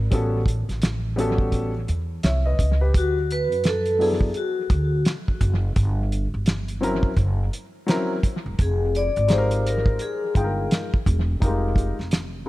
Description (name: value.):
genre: hip hop, jazz-hop.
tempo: 85 BPM.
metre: 4/4.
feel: swing 62% on 16ths.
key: unclear.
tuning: A4 = 440 Hz.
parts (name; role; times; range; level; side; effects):
upright bass; bass; 0.0-12.5 s; Fb1 to F#2; -24 LUFS; equal; none.
dark concert grand piano; accompaniment; 0.1-12.5 s; F#3 to G5; -27 LUFS; left 1 dB; none.
cloth-damped thuddy drum kit; drums; 0.1-12.3 s; hi-hat, kick drum, snare drum; -24 LUFS; equal; analog delay.
vibraphone with soft mallets; melody; 3.0-10.7 s; F#4 to D5; -24 LUFS; left 2 dB; analog delay.
room: light reverb, studio reverb.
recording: echo-heavy mix.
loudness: -20 LUFS.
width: side -17 dB against mid.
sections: 0.0-12.5 A section.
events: none.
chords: 0.1 A13; 2.9 D6; 5.8 Gm; 7.2 Gb7#11; 8.6 Fm11.